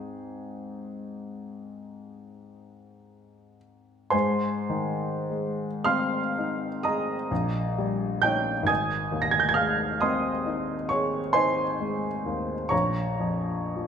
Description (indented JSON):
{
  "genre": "classical, romantic nocturne for solo piano",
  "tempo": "33-46 BPM (dotted quarters)",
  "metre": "9/8",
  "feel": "rubato",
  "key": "Ab major",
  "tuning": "A4 = 440 Hz",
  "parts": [
    { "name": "clear upright piano", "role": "solo", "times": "0.0-13.9 s", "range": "Ab1 to Bb6", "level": "-25 LUFS", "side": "equal", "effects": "none" }
  ],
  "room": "wet recital hall reverb, RT60 1.6 s",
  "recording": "none",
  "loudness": "-24 LUFS",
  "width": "side -7 dB against mid",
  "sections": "0.0-4.1 A section; 4.1-13.9 A section",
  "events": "none",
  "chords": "0.0 Ab; 7.3 Eb7/Bb; 8.7 Ab; 12.7 Bbm"
}